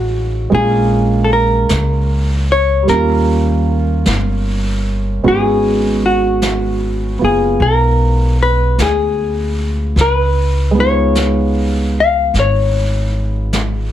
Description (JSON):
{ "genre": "jazz ballad", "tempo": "51 BPM", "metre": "4/4", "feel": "swing 67% on 8ths", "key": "unclear", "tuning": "A4 = 437 Hz", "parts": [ { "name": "vintage hollow-body jazz guitar", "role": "melody", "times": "0.0-13.5 s", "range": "F#4 to E#5", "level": "-16 LUFS", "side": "left 2 dB", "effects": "none" }, { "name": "warm concert grand piano", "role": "accompaniment", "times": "0.0-13.9 s", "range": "G3 to E#5", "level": "-19 LUFS", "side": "right 4 dB", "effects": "none" }, { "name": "upright bass", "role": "bass", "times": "0.0-13.9 s", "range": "F#1 to D#2", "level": "-16 LUFS", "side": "equal", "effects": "none" }, { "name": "jazz brush drum kit", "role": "drums", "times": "0.5-13.9 s", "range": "brushed snare drum, hi-hat, snare drum", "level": "-24 LUFS", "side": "equal", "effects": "none" } ], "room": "moderate small room ambience, RT60 0.5 s", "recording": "heavily compressed radio sound", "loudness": "-12 LUFS", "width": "side -11 dB against mid", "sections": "0.0-13.9 A section", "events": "none", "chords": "0.0 F#maj7; 0.5 A#m7; 2.9 D#7; 5.2 G#m7; 10.0 C#7" }